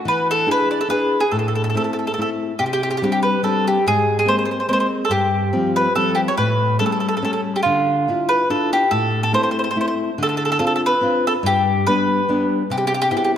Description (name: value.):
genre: italian folk.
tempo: 143 BPM.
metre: 3/4.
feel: straight.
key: C major.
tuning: A4 = 440 Hz.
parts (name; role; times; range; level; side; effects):
mandolin; melody; 0.1-13.3 s; F4 to D5; -18 LUFS; right 1 dB; none.
nylon-string guitar; accompaniment; 0.1-13.4 s; G2 to G#4; -21 LUFS; left 2 dB; none.
room: wet concert hall reverb, RT60 2.2 s.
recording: none.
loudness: -16 LUFS.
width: side -9 dB against mid.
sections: 0.0-2.6 A section; 2.6-13.4 B section.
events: none.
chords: 0.1 E7; 1.3 Am; 2.6 Csus2; 3.9 Abadd9; 5.1 G7sus4; 6.4 A7; 7.6 Dmadd9; 8.9 Am; 10.2 Dm7; 11.4 G; 12.7 Cmaj7.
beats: | 0.06 0.47 0.90 | 1.31 1.74 2.16 | 2.58 3.01 3.43 | 3.85 4.27 4.69 | 5.11 5.53 5.95 | 6.37 6.79 7.22 | 7.64 8.07 8.49 | 8.91 9.33 9.75 | 10.17 10.59 11.01 | 11.43 11.85 12.27 | 12.69 13.11.